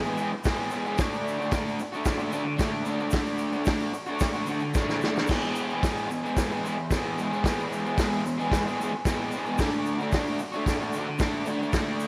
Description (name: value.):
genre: garage rock duo or trio.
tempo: 112 BPM.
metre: 4/4.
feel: straight.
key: unclear.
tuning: A4 = 438 Hz.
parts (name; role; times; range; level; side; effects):
crunchy overdriven guitar; riff; 0.0-12.1 s; E2 to G#4; -30 LUFS; equal; spring reverb.
egg shaker; percussion; 0.0-12.1 s; none; -50 LUFS; equal; none.
vintage drum kit; drums; 0.5-11.9 s; crash cymbal, hi-hat, kick drum, snare drum; -31 LUFS; equal; none.
room: light reverb, small room ambience.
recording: none.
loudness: -28 LUFS.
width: mono.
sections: 0.0-12.1 A section.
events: drum fill 4.8-5.3.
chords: 0.0 E; 1.0 D; 5.3 E; 9.6 D.